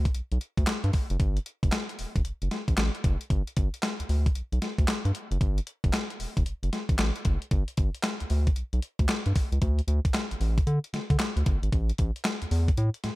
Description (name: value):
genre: R&B, new jack swing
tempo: 114 BPM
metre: 4/4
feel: swing 64% on 16ths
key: G major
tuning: A4 = 441 Hz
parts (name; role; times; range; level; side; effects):
- round analog bass; bass; 0.0-13.1 s; E1 to D3; -26 LUFS; equal; none
- crisp 8-bit digital drum machine; drums; 0.1-13.2 s; handclaps, hi-hat, kick drum, snare drum; -27 LUFS; equal; gated reverb
room: little or no reverb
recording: none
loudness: -25 LUFS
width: side -20 dB against mid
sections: 0.0-9.6 A section; 9.6-13.2 B section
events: none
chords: none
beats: 0.14 0.67 | 1.20 1.72 2.25 2.78 | 3.30 3.83 4.36 4.88 | 5.41 5.93 6.46 6.99 | 7.51 8.04 8.57 9.09 | 9.62 10.14 10.67 11.20 | 11.72 12.25 12.78